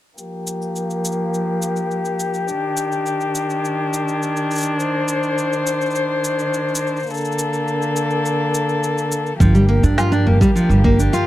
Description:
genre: folktronica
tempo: 104 BPM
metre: 4/4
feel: straight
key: G minor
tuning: A4 = 440 Hz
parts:
  - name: dark string quartet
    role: sustained chords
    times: 0.2-11.3 s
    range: D3 to C5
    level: -20 LUFS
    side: left 1 dB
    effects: low-pass filter
  - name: electronic cabasa and snare drum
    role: drums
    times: 0.2-11.2 s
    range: none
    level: -27 LUFS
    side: equal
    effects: none
  - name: nylon-string guitar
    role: arpeggios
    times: 9.4-11.3 s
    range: F3 to F4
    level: -16 LUFS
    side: right 1 dB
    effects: none
  - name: upright bass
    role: bass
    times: 9.4-11.1 s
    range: G1 to G2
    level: -15 LUFS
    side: right 1 dB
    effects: none
  - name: electronic kick drum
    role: drums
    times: 9.4-11.0 s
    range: none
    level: -18 LUFS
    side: right 1 dB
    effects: none
room: light reverb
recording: dry, close 1970s-style studio recording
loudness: -17 LUFS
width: side -14 dB against mid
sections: 0.2-9.4 A section; 9.4-11.3 B section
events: filter sweep on string quartet 0.2-9.4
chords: 0.2 Gm7; 2.5 Ebmaj7; 4.8 Cmadd9; 7.1 Bbmaj7; 9.4 Gm7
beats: | 0.17 0.75 1.33 1.91 | 2.48 3.06 3.64 4.21 | 4.79 5.37 5.94 6.52 | 7.10 7.67 8.25 8.83 | 9.40 9.98 10.56 11.14

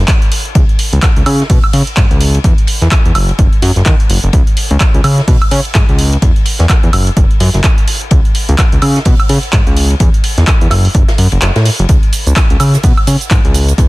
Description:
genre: piano house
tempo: 127 BPM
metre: 4/4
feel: swing 59% on 16ths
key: C# minor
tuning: A4 = 441 Hz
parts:
  - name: fat analog bass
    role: bass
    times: 0.0-13.9 s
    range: F#1 to D#3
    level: -11 LUFS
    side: equal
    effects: sidechain pumping
  - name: electronic kick drum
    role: drums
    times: 0.1-13.9 s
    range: none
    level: -10 LUFS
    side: equal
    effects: none
  - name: open jazz drum kit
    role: drums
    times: 0.1-13.9 s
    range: hi-hat, ride cymbal, snare drum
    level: -25 LUFS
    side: left 2 dB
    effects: high-pass filter on cymbals, high-pass filter on hats, soft clipping on snare, high-pass filter on snare, high-pass filter on room
  - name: punchy analog drum machine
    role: drums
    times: 0.1-13.9 s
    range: handclaps, hi-hat, shaker, woodblock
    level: -17 LUFS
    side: right 1 dB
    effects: none
room: little or no reverb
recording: dense, heavily limited modern master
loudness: -8 LUFS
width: side -20 dB against mid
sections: 0.0-13.9 A section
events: kick drops out 11.4-11.9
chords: none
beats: 0.08 | 0.55 1.03 1.50 1.97 | 2.44 2.92 3.39 3.86 | 4.33 4.80 5.28 5.75 | 6.22 6.70 7.17 7.64 | 8.11 8.59 9.06 9.53 | 10.00 10.47 10.95 11.42 | 11.89 12.36 12.84 13.31 | 13.78

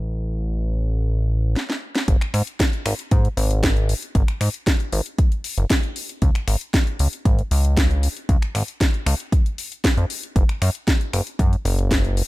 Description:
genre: nu-disco, nu disco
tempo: 116 BPM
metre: 4/4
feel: straight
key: unclear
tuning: A4 = 440 Hz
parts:
  - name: chorused synth bass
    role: bass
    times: 0.0-12.2 s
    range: F#1 to G#2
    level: -20 LUFS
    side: equal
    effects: none
  - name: house drum kit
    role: drums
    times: 1.6-12.3 s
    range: finger snaps, hi-hat, snare drum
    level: -25 LUFS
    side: equal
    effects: overdrive, small room ambience
  - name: electronic kick drum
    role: drums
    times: 2.1-12.0 s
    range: none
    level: -18 LUFS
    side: equal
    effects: overdrive, small room ambience
room: digital ambience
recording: none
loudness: -18 LUFS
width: side -19 dB against mid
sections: 0.0-2.1 A section; 2.1-12.3 B section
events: drum fill 1.6-2.1; stop 1.6-2.1; drop 2.1-12.3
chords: none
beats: | 0.01 0.53 1.05 1.57 | 2.08 2.60 3.12 3.63 | 4.15 4.67 5.19 5.70 | 6.22 6.74 7.25 7.77 | 8.29 8.81 9.32 9.84 | 10.36 10.88 11.39 11.91

